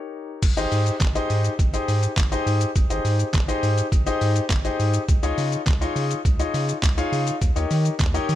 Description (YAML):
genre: dance-pop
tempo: 103 BPM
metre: 4/4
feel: straight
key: Ab major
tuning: A4 = 440 Hz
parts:
  - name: clear concert grand piano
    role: accompaniment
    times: 0.0-8.4 s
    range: Eb4 to F5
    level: -25 LUFS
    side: left 3 dB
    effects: sidechain pumping
  - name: round analog bass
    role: bass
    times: 0.4-8.4 s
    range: Ab1 to Eb3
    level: -23 LUFS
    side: right 1 dB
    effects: sidechain pumping
  - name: trip hop sampler-style drum kit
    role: drums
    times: 0.4-8.4 s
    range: crash cymbal, handclaps, hi-hat, kick drum, shaker, snare drum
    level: -23 LUFS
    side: equal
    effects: none
room: little or no reverb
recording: none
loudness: -19 LUFS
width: side -13 dB against mid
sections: 0.4-8.4 A section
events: break 0.0-0.4; drop 0.4-8.4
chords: 0.4 Abmaj7; 5.1 Dbadd9; 7.4 Eb7